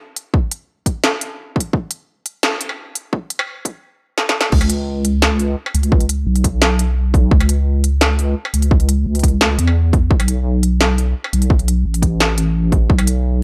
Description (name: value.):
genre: half-time drum and bass.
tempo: 172 BPM.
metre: 4/4.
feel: half-time.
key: C# minor.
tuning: A4 = 444 Hz.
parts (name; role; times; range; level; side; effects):
industrial drum kit; drums; 0.2-13.1 s; crash cymbal, hi-hat, snare drum, struck metal; -20 LUFS; equal; small room ambience.
electronic kick drum; drums; 0.3-13.0 s; none; -17 LUFS; equal; overdrive, small room ambience.
deep soft wobble bass; bass; 4.5-13.4 s; A1 to E2; -18 LUFS; equal; chorus.
room: little or no reverb.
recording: high-pass filter.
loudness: -17 LUFS.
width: mono.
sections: 0.0-4.5 A section; 4.5-13.4 B section.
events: build-up 0.0-4.5; filter sweep 0.0-4.5; drum fill 4.2-4.5; drop 4.5-13.4.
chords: none.